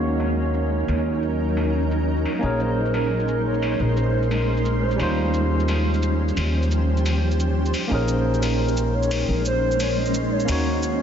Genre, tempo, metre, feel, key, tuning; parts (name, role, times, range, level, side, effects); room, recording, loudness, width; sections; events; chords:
liquid drum and bass; 175 BPM; 4/4; straight; Bb minor; A4 = 441 Hz
barky tine electric piano; accompaniment; 0.0-11.0 s; G3 to Db5; -27 LUFS; equal; low-pass filter, diffuse ambient delay
shimmering ambient pad; sustained chords; 0.0-11.0 s; F3 to C6; -26 LUFS; equal; chorus, built-in reverb
upright bass; bass; 0.0-11.0 s; Bb1 to Eb2; -23 LUFS; equal
electronic shaker and hi-hat; drums; 0.1-10.9 s; -33 LUFS; left 2 dB; low-pass filter on hats, low-pass filter on snare, low-pass filter on perc, low-pass filter on room
hollow clarinet-like synth lead; melody; 2.4-5.1, 7.9-10.6 s; Bb4 to Eb5; -29 LUFS; right 1 dB; wide subtle chorus, ping-pong delay
moderate huge ambient reverb, RT60 7.9 s; dreamy mix soaked in reverb, nothing above 7.7 kHz; -20 LUFS; side -8 dB against mid
0.0-11.0 A section
0.0 Ebm7; 2.4 Bbm11; 5.0 Eb13; 7.9 Bbm11; 10.5 Ebm7